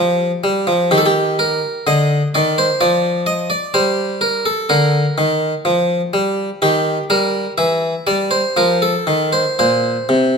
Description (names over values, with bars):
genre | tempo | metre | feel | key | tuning
classical, baroque-style suite movement for harpsichord | 62 BPM | 3/4 | rubato | unclear | A4 = 441 Hz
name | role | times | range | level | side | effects
harpsichord | solo | 0.0-10.4 s | Bb2 to E5 | -14 LUFS | equal | none
room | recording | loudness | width
moderate recital hall reverb, RT60 1.5 s | none | -14 LUFS | side -5 dB against mid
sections
0.0-10.4 A section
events
none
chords
0.0 Bb (rootless); 0.9 Cm9 (rootless); 2.8 N.C.; 3.7 Gm; 5.7 Fsus24; 6.6 Eb; 7.6 Em7; 8.6 F7; 9.6 N.C.